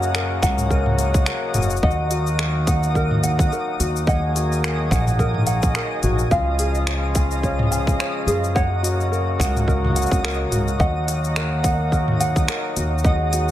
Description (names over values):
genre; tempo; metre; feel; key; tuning
folktronica; 107 BPM; 4/4; swing 56% on 16ths; Eb minor; A4 = 435 Hz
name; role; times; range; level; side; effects
mellow accordion; sustained chords; 0.0-13.5 s; Db3 to Ab4; -26 LUFS; left 3 dB; none
ukulele; arpeggios; 0.0-13.5 s; Gb4 to Ab5; -26 LUFS; right 1 dB; tape echo
upright bass; bass; 0.0-13.5 s; Gb1 to Gb2; -22 LUFS; equal; none
organic electronic drum kit; drums; 0.0-13.5 s; cabasa, finger snaps, hi-hat, toms; -25 LUFS; equal; overdrive
twinkling granular texture; texture; 0.0-13.5 s; Eb5 to Eb6; -31 LUFS; right 2 dB; built-in reverb
electronic kick drum; drums; 0.4-13.2 s; none; -21 LUFS; equal; overdrive
room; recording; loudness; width
light reverb, digital ambience; lossy compression artefacts; -18 LUFS; side -12 dB against mid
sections
0.0-13.5 A section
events
none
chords
0.0 Gb; 1.8 Ebm; 6.3 Db; 8.6 Gb; 10.8 Ebm